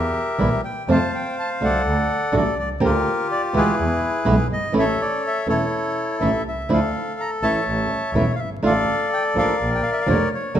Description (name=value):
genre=tango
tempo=124 BPM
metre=4/4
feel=rubato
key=D harmonic minor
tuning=A4 = 440 Hz
part: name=bandoneon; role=melody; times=0.0-10.6 s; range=E4 to Bb5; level=-22 LUFS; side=left 1 dB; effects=none
part: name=clear double bass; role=bass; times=0.0-10.6 s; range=E1 to F2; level=-24 LUFS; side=right 1 dB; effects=none
part: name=flamenco guitar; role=accompaniment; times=0.4-10.6 s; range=B2 to A4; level=-23 LUFS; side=right 2 dB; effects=none
room=moderate scoring stage reverb, RT60 1.7 s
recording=minimal, uncompressed stereo recording, vinyl crackle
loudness=-18 LUFS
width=side -10 dB against mid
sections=0.0-10.6 A section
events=none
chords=0.0 Edim; 0.9 F; 1.8 D; 2.8 Gm7/D; 3.8 E; 4.7 A; 6.7 Dmadd9; 7.7 A; 8.6 Dm/A; 9.6 Bb